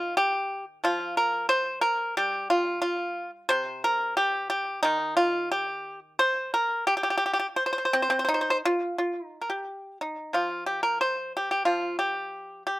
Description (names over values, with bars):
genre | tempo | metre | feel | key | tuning
chinese traditional, Chinese solo plucked strings | 89 BPM | 4/4 | rubato | unclear | A4 = 440 Hz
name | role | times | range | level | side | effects
pipa | solo | 0.0-12.8 s | C3 to C5 | -24 LUFS | equal | slapback echo
room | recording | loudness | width
little or no reverb | recorded outdoors, with no room sound | -24 LUFS | side -18 dB against mid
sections
0.0-9.0 A section; 9.0-12.8 B section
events
none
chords
none